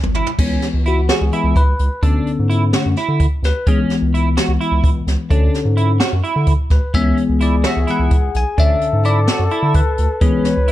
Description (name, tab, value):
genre	progressive instrumental, band music in an uneven meter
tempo	256 BPM (eighths)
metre	7/8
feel	straight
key	C# phrygian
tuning	A4 = 440 Hz
part	round analog bass	bass	0.0-10.7 s	G#1 to D3	-17 LUFS	equal	none
part	jazz brush drum kit	drums	0.0-10.7 s	crash cymbal, hi-hat, kick drum, snare drum, toms	-18 LUFS	equal	none
part	clean electric guitar	arpeggios	0.2-10.7 s	C#4 to F#4	-23 LUFS	right 5 dB	analog chorus, plate reverb
part	bell-like tine electric piano	accompaniment	0.4-10.7 s	D3 to G#5	-19 LUFS	left 4 dB	phaser
part	breathy flugelhorn	second line	6.9-10.7 s	G#4 to B4	-24 LUFS	left 3 dB	plate reverb
room	light reverb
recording	dark, warm production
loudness	-14 LUFS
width	side -14 dB against mid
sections	0.4-10.7 A section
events	drum fill 0.0-0.4; tine electric piano solo 0.4-10.7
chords	0.4 C#m7; 2.0 Bm7/D; 3.7 C#m7; 5.3 Dmaj9#11; 6.9 C#m7; 8.6 Bm7/D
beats	0.16 | 0.40 0.63 0.87 1.10 1.33 1.57 1.80 | 2.04 2.27 2.50 2.74 2.97 3.20 3.44 | 3.67 3.91 4.14 4.37 4.61 4.84 5.08 | 5.31 5.54 5.78 6.01 6.24 6.48 6.71 | 6.95 7.18 7.41 7.65 7.88 8.12 8.35 | 8.58 8.82 9.05 9.29 9.52 9.75 9.99 | 10.22 10.46 10.69